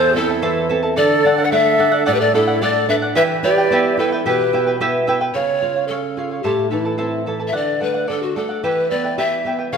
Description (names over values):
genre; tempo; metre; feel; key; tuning
andean folk, Andean ensemble; 110 BPM; 2/4; straight; E minor; A4 = 440 Hz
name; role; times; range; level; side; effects
breathy polished pan flute; melody; 0.0-9.8 s; E4 to F#5; -19 LUFS; left 2 dB; none
breathy bright large quena; second line; 0.0-4.8 s; E4 to D5; -21 LUFS; right 3 dB; none
charango; accompaniment; 0.0-9.8 s; E4 to A5; -22 LUFS; right 1 dB; none
nylon-string guitar; accompaniment; 0.0-9.8 s; E2 to G4; -23 LUFS; right 3 dB; none
room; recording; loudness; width
wet recital hall reverb, RT60 1.5 s; none; -15 LUFS; side -6 dB against mid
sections
0.0-5.3 A section; 5.3-9.8 B section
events
none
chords
0.0 Am; 1.0 D; 3.2 Em; 5.3 C#; 6.4 Am; 7.5 D; 8.6 Em